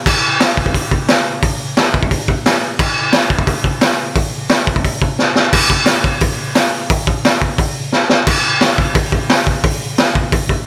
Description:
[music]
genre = punk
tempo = 175 BPM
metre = 4/4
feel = straight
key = none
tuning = none
[part]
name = raw garage drum kit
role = drums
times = 0.1-10.6 s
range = crash cymbal, hi-hat, kick drum, snare drum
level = -15 LUFS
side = equal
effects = none
[sound]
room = little or no reverb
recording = none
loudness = -15 LUFS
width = mono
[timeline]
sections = 0.0-5.5 A section; 5.5-8.3 B section; 8.3-10.7 C section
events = drum fill 5.2-5.5, 7.9-8.3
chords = none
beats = | 0.05 0.40 0.74 1.08 | 1.42 1.76 2.11 2.45 | 2.79 3.13 3.48 3.82 | 4.16 4.50 4.84 5.19 | 5.53 5.87 6.21 6.56 | 6.90 7.24 7.58 7.92 | 8.27 8.61 8.95 9.29 | 9.64 9.98 10.32

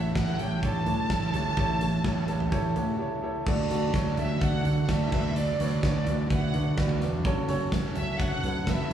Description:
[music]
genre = piano-driven pop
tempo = 127 BPM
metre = 4/4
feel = straight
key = D major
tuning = A4 = 444 Hz
[part]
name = warm studio violin section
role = melody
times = 0.0-8.9 s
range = D5 to A5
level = -33 LUFS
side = right 1 dB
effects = slapback echo
[part]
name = clear concert grand piano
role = accompaniment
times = 0.0-8.9 s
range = A2 to F#5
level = -32 LUFS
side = right 2 dB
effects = slapback echo
[part]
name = fingered electric bass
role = bass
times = 0.0-8.9 s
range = E1 to D3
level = -28 LUFS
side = right 1 dB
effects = none
[part]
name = huge arena drum kit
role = drums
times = 0.2-8.9 s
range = crash cymbal, hi-hat, kick drum, snare drum, toms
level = -29 LUFS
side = equal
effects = none
[sound]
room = light reverb, small room ambience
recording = live gig heard through the venue's PA, club reverb, studio reverb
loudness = -24 LUFS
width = side -9 dB against mid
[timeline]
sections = 0.0-3.5 A section; 3.5-8.9 B section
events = grand piano fill 2.5-3.5; break 3.0-3.5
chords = 0.0 A7; 3.5 D; 5.1 Bm/D; 7.2 F#m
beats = 0.16 0.63 1.10 | 1.57 2.05 2.52 2.99 | 3.47 3.94 4.41 4.88 | 5.36 5.83 6.30 6.78 | 7.25 7.72 8.20 8.67

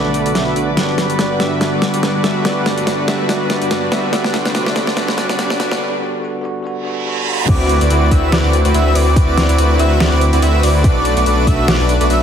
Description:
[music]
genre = future bass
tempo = 143 BPM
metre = 4/4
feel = swing 56% on 16ths, half-time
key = unclear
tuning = A4 = 437 Hz
[part]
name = bell-like tine electric piano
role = accompaniment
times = 0.0-7.5 s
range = D3 to F#4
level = -22 LUFS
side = right 1 dB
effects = auto-pan, sidechain pumping, tape echo
[part]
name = warm studio string section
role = sustained chords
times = 0.0-5.8 s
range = G3 to D6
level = -28 LUFS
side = equal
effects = sidechain pumping, low-pass filter
[part]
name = soft supersaw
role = riff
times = 0.0-12.2 s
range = G3 to E5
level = -17 LUFS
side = equal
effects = sidechain pumping, tape echo
[part]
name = wide detuned saw bass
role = bass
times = 0.0-12.2 s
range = G1 to G2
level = -17 LUFS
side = equal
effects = chorus, sidechain pumping
[part]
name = riser and reverse cymbal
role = sound effects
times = 0.1-7.5 s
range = none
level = -26 LUFS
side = right 3 dB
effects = none
[part]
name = dubstep drum kit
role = drums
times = 0.1-12.2 s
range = crash cymbal, hi-hat, snare drum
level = -20 LUFS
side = equal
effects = overdrive
[part]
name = airy dreamy lead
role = arpeggios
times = 7.5-12.2 s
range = D6 to E6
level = -21 LUFS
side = equal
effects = chorus, sidechain pumping
[part]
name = electronic kick drum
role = drums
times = 7.5-11.6 s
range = none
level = -14 LUFS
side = equal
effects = none
[sound]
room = moderate lush hall reverb, RT60 2.0 s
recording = heavily compressed radio sound, high-pass filter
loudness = -13 LUFS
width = side -8 dB against mid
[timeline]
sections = 0.0-7.5 A section; 7.5-12.2 B section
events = build-up 0.0-7.5; drum fill 0.0-5.8; filter sweep on supersaw synth 0.0-7.5; filter sweep 0.0-7.5; break 5.8-7.5; reverse cymbal 6.8-7.5; drop 7.5-12.2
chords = 0.0 Bm7; 0.8 Gmaj7; 3.9 C69; 7.5 D13; 10.8 Bm7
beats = 0.35 | 0.77 1.19 1.61 2.03 | 2.45 2.87 3.29 3.71 | 4.13 4.55 4.97 5.39 | 5.81 6.23 6.65 7.07 | 7.49 7.90 8.32 8.74 | 9.16 9.58 10.00 10.42 | 10.84 11.26 11.68 12.10

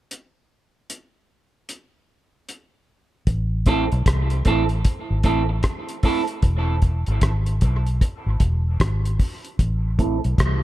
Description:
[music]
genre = dub reggae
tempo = 76 BPM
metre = 4/4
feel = swing 63% on 16ths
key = A harmonic minor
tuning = A4 = 440 Hz
[part]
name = cloth-damped thuddy drum kit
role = drums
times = 0.1-10.6 s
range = hi-hat, kick drum, rim click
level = -21 LUFS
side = equal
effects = none
[part]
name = vintage muted fingered electric bass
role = bass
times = 3.3-10.6 s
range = E1 to C2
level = -21 LUFS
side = equal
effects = none
[part]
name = semi-hollow electric guitar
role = accompaniment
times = 3.7-10.2 s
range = A3 to A4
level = -25 LUFS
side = right 4 dB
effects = low-pass filter, dub echo
[sound]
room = light reverb, small room reverb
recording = dark, warm production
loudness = -19 LUFS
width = side -15 dB against mid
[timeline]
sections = 0.1-3.3 A section; 3.3-9.6 B section; 9.6-10.6 C section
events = filter sweep on clean electric guitar 9.6-10.6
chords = 0.1 N.C.; 3.3 Am; 6.4 E; 9.6 Am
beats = | 0.11 0.90 1.69 2.48 | 3.27 4.06 4.85 5.64 | 6.43 7.22 8.01 8.80 | 9.60 10.39

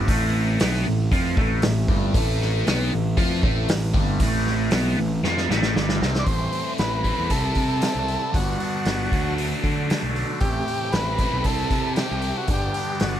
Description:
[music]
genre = psychedelic rock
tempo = 116 BPM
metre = 4/4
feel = straight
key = A dorian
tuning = A4 = 440 Hz
[part]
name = mellow tonewheel organ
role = sustained chords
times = 0.0-13.2 s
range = G3 to A5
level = -34 LUFS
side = right 6 dB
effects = slow rotary speaker
[part]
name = crunchy overdriven guitar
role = riff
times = 0.0-13.2 s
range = G2 to F4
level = -26 LUFS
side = equal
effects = phaser
[part]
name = fuzz picked electric bass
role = bass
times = 0.0-13.2 s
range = G1 to D3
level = -25 LUFS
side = equal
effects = overdrive
[part]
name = vintage drum kit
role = drums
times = 0.1-13.1 s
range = hi-hat, kick drum, snare drum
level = -25 LUFS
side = equal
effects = none
[part]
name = overdriven combo organ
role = melody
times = 6.2-13.2 s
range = F#4 to D5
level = -28 LUFS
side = equal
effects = tape echo
[sound]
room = little or no reverb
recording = none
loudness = -20 LUFS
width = side -11 dB against mid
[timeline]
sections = 0.0-6.3 A section; 6.3-13.2 B section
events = drum fill 5.2-6.3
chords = 0.0 Am; 6.3 Am7; 7.3 C6; 8.3 Gadd9; 9.1 D; 10.4 Am7; 11.4 C6; 12.5 Gadd9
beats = | 0.09 0.60 1.12 1.63 | 2.15 2.66 3.18 3.69 | 4.21 4.73 5.24 5.76 | 6.28 6.79 7.31 7.83 | 8.34 8.86 9.38 9.89 | 10.41 10.93 11.45 11.96 | 12.48 13.00

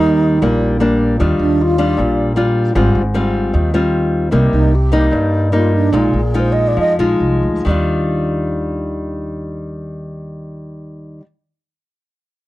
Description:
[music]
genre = bossa nova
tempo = 130-154 BPM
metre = 4/4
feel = straight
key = Eb major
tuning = A4 = 440 Hz
[part]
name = breathy mellow wooden-headed alto flute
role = melody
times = 0.0-2.0, 4.5-6.9 s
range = D4 to Eb5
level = -17 LUFS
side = right 3 dB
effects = none
[part]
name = nylon-string guitar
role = accompaniment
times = 0.0-11.3 s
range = G2 to F4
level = -16 LUFS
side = left 1 dB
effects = none
[part]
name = upright bass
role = bass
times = 0.0-11.2 s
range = Ab1 to G2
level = -18 LUFS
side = equal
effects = none
[sound]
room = little or no reverb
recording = dry, close 1970s-style studio recording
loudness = -13 LUFS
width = side -17 dB against mid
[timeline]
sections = 0.0-1.2 A section; 1.2-7.7 B section; 7.7-11.4 C section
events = alto flute solo 1.2-7.7; slowing down 4.3-7.7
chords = 0.0 Ebmaj7; 1.2 Ebmaj9; 2.8 Ab6; 4.3 Cm7; 5.9 Bb7sus4; 7.7 Ebmaj9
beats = 0.02 0.41 0.80 | 1.19 1.58 1.98 2.37 | 2.76 3.15 3.54 3.93 | 4.33 4.72 5.12 5.52 | 5.92 6.34 6.77 7.21 | 7.67 8.13 8.59 9.05 | 9.52 9.98 10.44 10.90

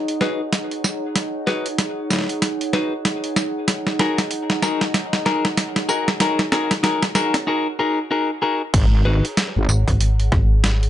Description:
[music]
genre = glitch hop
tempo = 95 BPM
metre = 4/4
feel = swing 60% on 16ths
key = unclear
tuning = A4 = 441 Hz
[part]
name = warbly tape-like pad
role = texture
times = 0.0-10.9 s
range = D#4 to F#5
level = -27 LUFS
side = right 1 dB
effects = chorus, built-in reverb, sidechain pumping
[part]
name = boom bap sampler-style drum kit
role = drums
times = 0.1-10.9 s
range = crash cymbal, hi-hat, rim click, snare drum, tambourine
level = -21 LUFS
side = equal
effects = none
[part]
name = clean electric guitar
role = stabs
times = 0.2-9.2 s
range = D#4 to B4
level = -22 LUFS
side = left 2 dB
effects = sidechain pumping, dub echo
[part]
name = wobble bass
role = bass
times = 8.7-9.7 s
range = G#1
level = -17 LUFS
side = equal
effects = chorus, tube saturation
[part]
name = electronic kick drum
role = drums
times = 8.7-10.5 s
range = none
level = -18 LUFS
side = equal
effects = none
[part]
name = slap-like FM bass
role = bass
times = 9.7-10.9 s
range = G#1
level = -17 LUFS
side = equal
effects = tube saturation
[sound]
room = wet studio ambience, RT60 0.5 s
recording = nothing above 11.0 kHz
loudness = -18 LUFS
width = side -12 dB against mid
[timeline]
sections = 0.0-8.7 A section; 8.7-10.9 B section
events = build-up 0.0-8.7; drum fill 0.0-7.5; break 7.5-8.7; drop 8.7-10.9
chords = 0.0 G#m7; 3.7 D#m7; 8.7 G#7(no3)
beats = 0.53 | 1.16 1.79 2.42 3.05 | 3.69 4.32 4.95 5.58 | 6.21 6.84 7.47 8.11 | 8.74 9.37 10.00 10.63

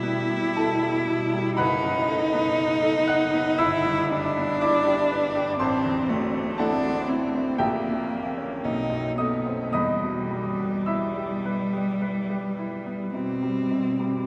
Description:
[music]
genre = classical, romantic duo for cello and grand piano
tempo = 52-62 BPM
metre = 4/4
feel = rubato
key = E minor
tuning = A4 = 442 Hz
[part]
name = rich cello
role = melody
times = 0.0-14.3 s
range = G3 to E4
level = -27 LUFS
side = equal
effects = none
[part]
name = bright grand piano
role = accompaniment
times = 0.0-14.3 s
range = F#1 to F#6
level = -29 LUFS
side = equal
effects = none
[sound]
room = wet cathedral reverb, RT60 6.9 s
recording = heard from further back in the room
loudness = -25 LUFS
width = mono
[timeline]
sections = 0.0-14.3 A section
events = none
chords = 0.0 Em; 1.6 B7/F#; 3.6 Em/G; 5.6 F#m7b5/A; 7.6 A#dim7; 8.6 B7b9; 9.7 Em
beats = 0.55 | 1.56 2.56 3.58 4.62 | 5.60 6.59 7.60 8.64 | 9.74 10.87 12.01 13.15

